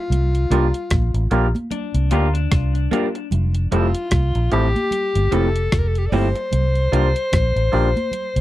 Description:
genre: lovers rock reggae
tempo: 75 BPM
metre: 4/4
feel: swing 58% on 16ths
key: F major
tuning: A4 = 440 Hz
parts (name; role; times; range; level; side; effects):
- breathy alto saxophone; melody; 0.0-8.4 s; F4 to D5; -23 LUFS; left 2 dB; tape echo
- vintage muted fingered electric bass; bass; 0.1-8.4 s; F1 to D2; -18 LUFS; equal; none
- gated 80s digital drum machine; drums; 0.1-8.4 s; hi-hat, kick drum, rim click; -22 LUFS; equal; none
- congas; percussion; 0.1-8.3 s; none; -30 LUFS; right 3 dB; tape echo
- overdriven tine electric piano; accompaniment; 0.5-7.9 s; A3 to G4; -22 LUFS; left 2 dB; none
- electric guitar through a small old amp; stabs; 0.5-7.9 s; F3 to Bb4; -24 LUFS; right 6 dB; phaser
- electric guitar through a small old amp; arpeggios; 1.7-3.3 s; D4 to F4; -31 LUFS; left 13 dB; tape echo
room: little or no reverb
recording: dry, close 1970s-style studio recording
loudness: -17 LUFS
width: side -15 dB against mid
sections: 0.0-8.4 A section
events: none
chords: 0.1 C9sus4; 3.3 Fmaj7; 6.5 C9sus4

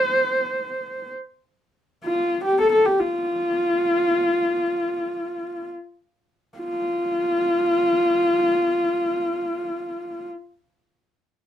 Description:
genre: mongolian traditional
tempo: free time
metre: none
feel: none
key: F gong mode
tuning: A4 = 436 Hz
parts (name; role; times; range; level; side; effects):
- warm horsehead fiddle; solo; 0.0-10.3 s; F4 to C5; -20 LUFS; left 1 dB; none
room: light reverb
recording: dark, warm production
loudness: -20 LUFS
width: side -10 dB against mid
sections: 0.0-6.6 A section; 6.6-9.8 B section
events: slowing down 1.2-6.6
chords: none

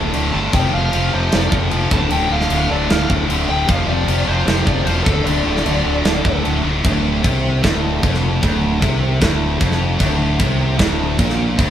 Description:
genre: hard rock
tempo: 152 BPM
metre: 4/4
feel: straight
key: D minor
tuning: A4 = 439 Hz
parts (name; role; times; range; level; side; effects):
- distorted electric guitar; riff; 0.0-11.7 s; D2 to F3; -26 LUFS; equal; distortion
- heavy high-gain guitar; riff; 0.0-11.7 s; D2 to F3; -20 LUFS; equal; distortion
- fuzz fingered electric bass; bass; 0.0-11.7 s; D1 to C2; -20 LUFS; equal; overdrive
- tight metal drum kit; drums; 0.1-11.7 s; crash cymbal, kick drum, snare drum; -19 LUFS; equal; none
- smooth overdriven lead guitar; melody; 0.3-6.4 s; A4 to A5; -23 LUFS; left 2 dB; none
room: light reverb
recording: band playing live in one room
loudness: -14 LUFS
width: side -10 dB against mid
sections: 0.0-6.8 A section; 6.8-11.7 B section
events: none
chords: 0.0 D5; 0.5 F5; 1.9 Dm; 3.7 F5; 5.1 D5; 6.8 Dm

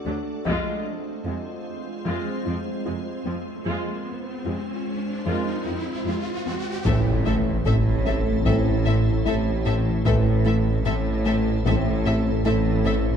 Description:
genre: cinematic, hybrid orchestral and electronic film score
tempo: 75 BPM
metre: 4/4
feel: straight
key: unclear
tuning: A4 = 440 Hz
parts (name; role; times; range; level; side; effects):
- soft additive organ-like pad; sustained chords; 0.0-13.2 s; Ab3 to C5; -30 LUFS; equal; ensemble chorus, built-in reverb, low-pass filter
- warm grand piano; texture; 0.0-13.2 s; A4 to F#5; -38 LUFS; left 2 dB; ping-pong delay
- rich symphonic viola section; accompaniment; 0.1-12.9 s; C3 to F4; -33 LUFS; right 1 dB; low-pass filter
- soft round pluck; arpeggios; 0.1-13.1 s; F3 to A4; -35 LUFS; left 5 dB; none
- clear symphonic cello section; bass; 0.1-13.2 s; D2 to A2; -28 LUFS; right 2 dB; none
- taiko ensemble; drums; 0.5-2.0, 6.9-12.4 s; none; -29 LUFS; equal; none
- riser and impact; sound effects; 3.0-10.1 s; none; -32 LUFS; equal; none
- clear studio violin section; melody; 6.9-12.9 s; E5; -34 LUFS; left 5 dB; low-pass filter
- clear symphonic violin section; second line; 6.9-12.9 s; A4; -34 LUFS; left 4 dB; none
- warm French horn section; sustained chords; 6.9-12.0 s; A3 to C4; -35 LUFS; left 2 dB; low-pass filter
- warm trombone section; sustained chords; 6.9-12.0 s; A2 to E3; -34 LUFS; right 2 dB; none
- rubbery square bass; riff; 6.9-13.1 s; A2 to A3; -26 LUFS; left 2 dB; low-pass filter
- clear symphonic double bass section; bass; 6.9-13.2 s; A1; -29 LUFS; right 2 dB; none
- phased detuned saw bass; bass; 6.9-13.2 s; A1; -27 LUFS; left 1 dB; phaser
- warm tuba; bass; 6.9-13.1 s; A1; -30 LUFS; right 4 dB; none
room: moderate scoring stage reverb, RT60 1.6 s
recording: dark, warm production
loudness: -21 LUFS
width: side -8 dB against mid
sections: 0.0-6.9 A section; 6.9-13.2 B section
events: build-up 0.0-6.9; riser 3.0-6.9; impact 6.9-10.1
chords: 0.5 Fm; 6.9 Am

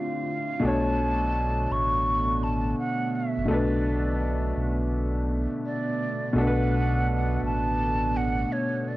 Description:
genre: hip hop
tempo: 84 BPM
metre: 4/4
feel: swing 64% on 16ths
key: B minor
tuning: A4 = 438 Hz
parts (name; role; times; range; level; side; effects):
- breathy mellow concert flute; melody; 0.0-9.0 s; C#5 to C#6; -29 LUFS; right 1 dB; low-pass filter, plate reverb
- warm upright piano; accompaniment; 0.0-9.0 s; B2 to C#5; -27 LUFS; left 1 dB; cassette tape, low-pass filter, plate reverb
- warbly tape-like pad; sustained chords; 0.0-9.0 s; D3 to F4; -34 LUFS; right 3 dB; chorus, built-in reverb, phaser, low-pass filter, plate reverb
- sub bass with octave; bass; 0.6-8.5 s; F#1 to B1; -28 LUFS; equal; none
room: moderate small room reverb, RT60 0.5 s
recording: worn, warbling old tape, cassette tape, warbly pitch drift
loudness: -23 LUFS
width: side -17 dB against mid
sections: 0.0-9.0 A section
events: none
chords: 0.0 Dm9; 0.6 Bm9

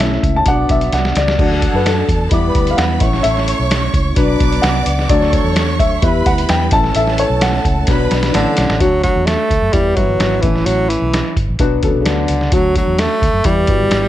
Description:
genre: uptempo 1960s-style soul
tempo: 129 BPM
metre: 4/4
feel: straight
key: D major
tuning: A4 = 440 Hz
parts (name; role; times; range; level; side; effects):
- warm horn section; second line; 0.0-8.6 s; E3 to F#5; -25 LUFS; right 2 dB; none
- dark upright piano; accompaniment; 0.0-14.1 s; E3 to A5; -18 LUFS; left 3 dB; none
- mellow tonewheel organ; sustained chords; 0.0-8.8 s; F#3 to D5; -26 LUFS; right 4 dB; chorus vibrato, stopped rotary speaker
- vintage muted fingered electric bass; bass; 0.0-14.1 s; G1 to G2; -18 LUFS; equal; none
- lo-fi sampler-style drum kit; drums; 0.0-14.0 s; crash cymbal, hi-hat, kick drum, snare drum; -18 LUFS; equal; none
- warm studio violin section; second line; 1.4-8.8 s; A4 to D6; -23 LUFS; right 3 dB; none
- breathy tenor saxophone; melody; 8.3-14.1 s; C#3 to A3; -16 LUFS; right 1 dB; none
room: light reverb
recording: none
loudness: -12 LUFS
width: side -13 dB against mid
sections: 0.0-8.8 A section; 8.8-14.1 B section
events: upright piano solo 0.0-8.8; drum fill 0.9-1.4, 7.9-8.8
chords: 0.5 Bm; 1.4 D; 2.3 Em; 3.0 A; 4.2 Bm; 5.1 D; 6.0 Em; 6.7 A; 7.9 Bm; 8.3 A; 8.8 D; 9.7 Em; 10.4 A; 11.6 Bm; 12.5 D; 13.5 Em

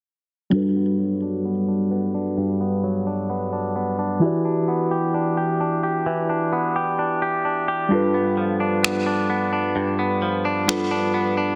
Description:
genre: contemporary R&B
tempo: 65 BPM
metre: 4/4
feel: straight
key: unclear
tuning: A4 = 440 Hz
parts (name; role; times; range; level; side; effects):
- muted felt-like synth keys; accompaniment; 0.5-11.6 s; E3 to D5; -25 LUFS; equal; chorus, low-pass filter
- direct-recorded clean electric guitar; arpeggios; 0.5-11.6 s; G2 to G4; -25 LUFS; equal; low-pass filter, digital delay
- electronic finger snaps; drums; 8.8-10.9 s; none; -27 LUFS; equal; soft clipping on snare
room: moderate lush hall reverb, RT60 2.4 s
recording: dense, heavily limited modern master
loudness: -22 LUFS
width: mono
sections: 0.5-11.6 A section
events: filter sweep 0.5-11.6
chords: 0.5 Gmaj7; 4.2 Em7; 7.9 G7

